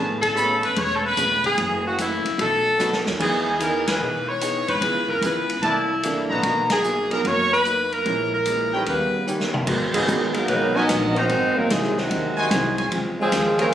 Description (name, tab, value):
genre	jazz, big band swing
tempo	148 BPM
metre	4/4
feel	swing 67% on 8ths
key	B major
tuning	A4 = 437 Hz
part	vintage hollow-body jazz guitar	accompaniment	0.0-13.7 s	F#2 to B4	-29 LUFS	left 2 dB	none
part	warm concert grand piano	accompaniment	0.0-13.7 s	E3 to B4	-29 LUFS	right 3 dB	none
part	clear trumpet section	stabs	0.0-13.7 s	D#4 to B5	-26 LUFS	equal	none
part	upright bass	bass	0.0-13.7 s	E1 to B2	-30 LUFS	equal	none
part	edgy saxophone section	melody	0.2-13.7 s	D#3 to D#5	-22 LUFS	equal	none
part	swinging big-band drum kit	drums	0.2-13.7 s	crash cymbal, hi-hat, kick drum, ride cymbal, snare drum, toms	-29 LUFS	equal	none
part	mellow trombone section	second line	8.9-13.7 s	B2 to D#4	-24 LUFS	right 1 dB	none
room	moderate large studio reverb, RT60 1.2 s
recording	recorded on a phone in the room, club reverb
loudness	-19 LUFS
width	side -10 dB against mid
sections	0.0-9.7 A section; 9.7-13.7 B section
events	band accent 0.2, 3.8, 6.6, 9.9; drum fill 2.8-3.2, 9.3-9.7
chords	0.0 Amaj9; 1.6 F#m7; 2.4 B7; 3.2 Emaj7; 4.8 C#m7; 5.6 C13; 6.4 Bmaj7; 8.1 A#m7b5; 8.9 D#aug7; 9.7 G#m9; 11.3 G#7; 12.9 C#maj7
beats	0.36 0.77 1.17 | 1.58 1.98 2.39 2.79 | 3.20 3.60 4.01 4.41 | 4.82 5.22 5.63 6.03 | 6.44 6.84 7.25 7.65 | 8.06 8.46 8.87 9.27 | 9.68 10.08 10.49 10.89 | 11.30 11.70 12.11 12.51 | 12.91 13.32 13.72